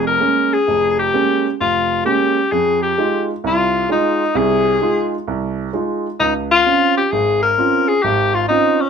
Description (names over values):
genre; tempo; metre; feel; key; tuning
jazz; 130 BPM; 4/4; swing 67% on 8ths; F minor; A4 = 440 Hz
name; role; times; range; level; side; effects
breathy tenor saxophone; melody; 0.0-8.9 s; Db4 to Bb4; -15 LUFS; left 4 dB; none
warm grand piano; accompaniment; 0.0-8.8 s; F1 to F4; -19 LUFS; right 5 dB; none
room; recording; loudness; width
moderate small room reverb, RT60 0.6 s; none; -14 LUFS; side -6 dB against mid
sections
0.0-8.9 A section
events
none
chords
0.0 Bbm7; 2.5 Fm7; 6.2 Dbmaj7